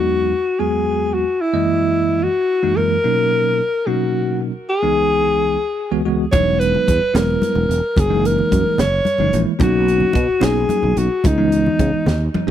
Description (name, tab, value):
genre	electric jazz fusion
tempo	73 BPM (dotted quarters)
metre	6/8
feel	straight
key	E lydian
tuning	A4 = 440 Hz
part	breathy alto saxophone	melody	0.0-12.4 s	D#4 to C#5	-18 LUFS	left 1 dB	tape echo
part	bell-like tine electric piano	accompaniment	0.0-12.5 s	C#2 to D#5	-20 LUFS	right 1 dB	fast stereo tremolo
part	sustaining fretless electric bass	bass	6.3-12.5 s	E1 to C#3	-19 LUFS	right 1 dB	none
part	crisp fusion drum kit	drums	6.3-12.5 s	hi-hat, kick drum, snare drum, toms	-22 LUFS	right 1 dB	none
part	congas	percussion	6.3-12.5 s	none	-24 LUFS	left 2 dB	none
room	little or no reverb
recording	none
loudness	-15 LUFS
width	side -10 dB against mid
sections	0.0-12.5 A section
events	drum fill 12.1-12.5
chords	0.0 Emaj9; 1.4 F#13; 3.1 Bmaj7; 4.7 C#m9; 6.3 Emaj9; 8.0 F#13; 9.6 Bmaj7; 11.2 C#m9